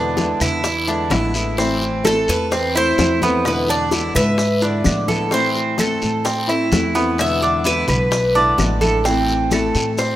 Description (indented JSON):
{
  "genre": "latin, Cuban son and guajira",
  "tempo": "128 BPM",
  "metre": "4/4",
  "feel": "straight",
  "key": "A harmonic minor",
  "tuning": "A4 = 440 Hz",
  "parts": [
    { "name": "Cuban tres", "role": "melody", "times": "0.0-8.3 s", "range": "A4 to E5", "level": "-23 LUFS", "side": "left 1 dB", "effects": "none" },
    { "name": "nylon-string guitar", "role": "second line", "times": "0.0-1.1 s", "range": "none", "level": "barely audible", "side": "none", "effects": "none" },
    { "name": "nylon-string guitar", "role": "accompaniment", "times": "0.0-10.0 s", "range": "B2 to E4", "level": "-23 LUFS", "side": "left 2 dB", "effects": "none" },
    { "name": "Cuban tres", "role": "arpeggios", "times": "0.0-10.2 s", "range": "B3 to B4", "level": "-20 LUFS", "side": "right 2 dB", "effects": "none" },
    { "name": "upright bass", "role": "bass", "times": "0.0-10.2 s", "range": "A1 to A2", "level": "-24 LUFS", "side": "equal", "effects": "none" },
    { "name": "bongos", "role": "percussion", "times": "0.2-10.2 s", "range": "none", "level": "-26 LUFS", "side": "left 4 dB", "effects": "none" },
    { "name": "congas", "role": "percussion", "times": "0.2-10.2 s", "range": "none", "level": "-27 LUFS", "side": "left 1 dB", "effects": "none" },
    { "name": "guiro", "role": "percussion", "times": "0.2-10.2 s", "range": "none", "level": "-29 LUFS", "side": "left 2 dB", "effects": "none" },
    { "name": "maracas", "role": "percussion", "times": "0.2-10.2 s", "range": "none", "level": "-32 LUFS", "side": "right 1 dB", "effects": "none" },
    { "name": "claves", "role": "percussion", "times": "0.4-9.8 s", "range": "none", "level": "-31 LUFS", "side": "right 1 dB", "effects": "none" }
  ],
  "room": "moderate lush hall reverb, RT60 2.6 s",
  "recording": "rough home demo mix",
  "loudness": "-15 LUFS",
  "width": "side -13 dB against mid",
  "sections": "0.0-1.6 A section; 1.6-10.2 B section",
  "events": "Cuban tres solo 1.6-10.2",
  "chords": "0.0 E7; 1.6 Am; 3.5 E7; 5.3 Am; 7.2 E7; 9.1 Am"
}